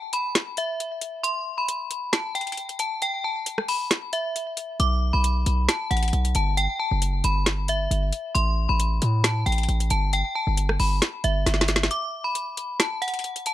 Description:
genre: hip hop, trap.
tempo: 135 BPM.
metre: 4/4.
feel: half-time.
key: unclear.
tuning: A4 = 440 Hz.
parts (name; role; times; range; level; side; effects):
metallic FM bell; melody; 0.0-13.5 s; E5 to D6; -26 LUFS; left 1 dB; chorus, low-pass filter, ping-pong delay.
trap drum kit; drums; 0.1-13.5 s; hi-hat, rim click, snare drum; -25 LUFS; equal; overdrive.
hard-hitting 808-style bass; bass; 4.8-11.9 s; F#1 to A2; -22 LUFS; equal; none.
room: little or no reverb.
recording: none.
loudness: -22 LUFS.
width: side -14 dB against mid.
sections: 0.0-13.5 A section.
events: break 0.0-4.8, 11.9-13.5; drum fill 11.5-11.9.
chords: 0.0 N.C.; 4.8 B5; 6.6 Gmaj7sus2/F#; 8.4 Gadd9; 10.1 Gsus2; 11.9 N.C..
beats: 0.35 0.80 | 1.24 1.69 2.13 2.58 | 3.02 3.46 3.91 4.35 | 4.80 5.24 5.69 6.13 | 6.58 7.02 7.46 7.91 | 8.35 8.80 9.24 9.69 | 10.13 10.57 11.02 11.46 | 11.91 12.35 12.80 13.24.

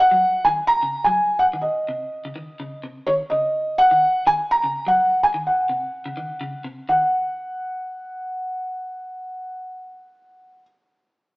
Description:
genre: afrobeat.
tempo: 126 BPM.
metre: 4/4.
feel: straight.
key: Eb dorian.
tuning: A4 = 440 Hz.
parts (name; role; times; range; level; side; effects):
felt-muted upright piano; melody; 0.0-10.6 s; Db5 to Bb5; -19 LUFS; equal; none.
clean electric guitar; arpeggios; 0.1-7.0 s; C3 to Gb3; -35 LUFS; left 1 dB; none.
room: wet stone room reverb, RT60 1.4 s.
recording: band playing live in one room, small speaker sound.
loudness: -18 LUFS.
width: side -23 dB against mid.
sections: 0.0-6.9 A section; 6.9-10.7 B section.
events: none.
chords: 0.0 Ebm7; 6.9 N.C..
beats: 0.22 0.69 | 1.17 1.65 2.12 2.60 | 3.07 3.55 4.02 4.50 | 4.97 5.45 5.92 6.40 | 6.88 7.35 7.83 8.30 | 8.78 9.25 9.72 10.20.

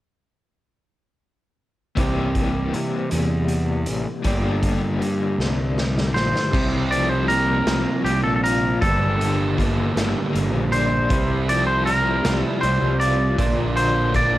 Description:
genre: indie rock.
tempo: 53 BPM (dotted quarters).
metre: 6/8.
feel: straight.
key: C mixolydian.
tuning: A4 = 440 Hz.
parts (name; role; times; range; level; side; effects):
raw garage guitar; riff; 2.0-14.4 s; G2 to G4; -27 LUFS; left 6 dB; overdrive, tremolo, cassette tape.
sludgy distorted guitar; riff; 2.0-14.4 s; G2 to G4; -26 LUFS; right 5 dB; overdrive, wide subtle chorus, cassette tape.
fuzz fingered electric bass; bass; 2.0-14.4 s; G1 to C3; -23 LUFS; equal; overdrive.
raw garage drum kit; drums; 2.0-14.3 s; crash cymbal, hi-hat, kick drum, snare drum; -26 LUFS; equal; cassette tape.
twangy electric guitar; melody; 6.1-14.4 s; G4 to D5; -22 LUFS; equal; cassette tape.
room: light reverb.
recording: home recording on cassette.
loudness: -18 LUFS.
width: side -15 dB against mid.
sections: 2.0-6.5 A section; 6.5-14.4 B section.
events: drum fill 5.4-6.5.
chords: 2.0 C5; 4.3 Gm; 6.5 C7sus4; 8.8 Gmadd9; 11.1 C7sus4; 13.4 Bb.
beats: | 1.98 3.12 | 4.26 5.40 | 6.54 7.68 | 8.82 9.96 | 11.11 12.25 | 13.39.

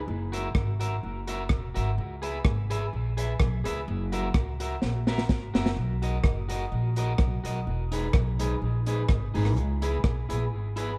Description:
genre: ska.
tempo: 126 BPM.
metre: 4/4.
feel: swing 54% on 8ths.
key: B major.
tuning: A4 = 441 Hz.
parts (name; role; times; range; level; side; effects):
upright bass; bass; 0.0-10.9 s; E1 to C#2; -31 LUFS; equal; none.
electric guitar at the edge of break-up; accompaniment; 0.3-10.9 s; D#4 to E5; -36 LUFS; equal; spring reverb, tape echo.
crunchy breakbeat drum kit; drums; 0.3-10.9 s; hi-hat, kick drum, rim click, snare drum; -29 LUFS; equal; none.
room: little or no reverb.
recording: dark, warm production.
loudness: -28 LUFS.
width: mono.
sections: 0.0-5.8 A section; 5.8-11.0 B section.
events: drum fill 4.8-5.8.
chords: 0.1 F#7; 2.0 C#m7; 3.9 F#7; 5.8 Bmaj7; 7.7 Emaj7; 9.6 C#m7.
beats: | 0.07 0.55 1.02 1.50 | 1.97 2.45 2.92 3.40 | 3.87 4.34 4.82 5.29 | 5.77 6.24 6.72 7.19 | 7.67 8.14 8.62 9.09 | 9.56 10.04 10.51.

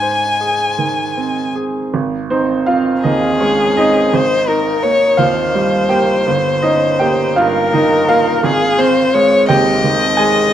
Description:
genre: classical, romantic duo for violin and grand piano.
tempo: 55 BPM (dotted quarters).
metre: 6/8.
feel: uneven beats, rubato.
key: Ab major.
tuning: A4 = 440 Hz.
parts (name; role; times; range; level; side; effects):
clear violin; melody; 0.0-10.5 s; Ab4 to Ab5; -15 LUFS; left 3 dB; none.
bright baby grand piano; accompaniment; 0.0-10.5 s; G1 to Ab5; -14 LUFS; right 2 dB; none.
room: moderate recital hall reverb, RT60 1.4 s.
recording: dark, warm production.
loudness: -12 LUFS.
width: side -10 dB against mid.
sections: 0.0-1.9 A section; 1.9-10.5 A section.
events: none.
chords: 0.0 Ab; 4.1 Eb/Ab; 6.3 Eb7/G; 8.4 Fm7/Ab.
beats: 0.78 | 1.93 3.04 | 4.12 5.18 | 6.27 7.36 | 8.43 9.48.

